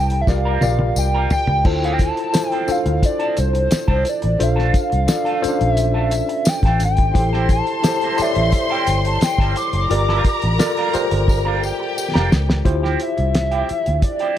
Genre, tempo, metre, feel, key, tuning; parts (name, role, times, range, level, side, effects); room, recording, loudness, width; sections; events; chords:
lush 1970s-style soul; 87 BPM; 4/4; straight; D minor; A4 = 444 Hz
hollow square lead; melody; 0.0-14.4 s; C5 to D6; -22 LUFS; left 1 dB; chorus, tape echo
tine electric piano; accompaniment; 0.0-14.4 s; C#4 to D5; -23 LUFS; left 1 dB; overdrive, fast stereo tremolo
vintage muted fingered electric bass; bass; 0.0-14.0 s; F1 to D2; -20 LUFS; equal
electric guitar through a small old amp; riff; 0.1-14.4 s; F3 to Bb4; -28 LUFS; right 4 dB; wah
cloth-damped thuddy drum kit; drums; 0.1-14.4 s; crash cymbal, hi-hat, kick drum, snare drum, toms; -19 LUFS; equal
tambourine; percussion; 0.3-12.5 s; -33 LUFS; left 6 dB
warm studio violin section; second line; 7.1-12.6 s; G4 to C6; -25 LUFS; left 1 dB
small room ambience; -16 LUFS; side -11 dB against mid
0.0-1.7 A section; 1.7-12.7 B section; 12.7-14.4 A section
drum fill 0.3-1.7, 11.3-12.7
0.3 C7sus4; 1.7 Dm7; 4.4 Bbmaj7; 7.2 Am7; 9.9 Gm7; 12.7 Dm11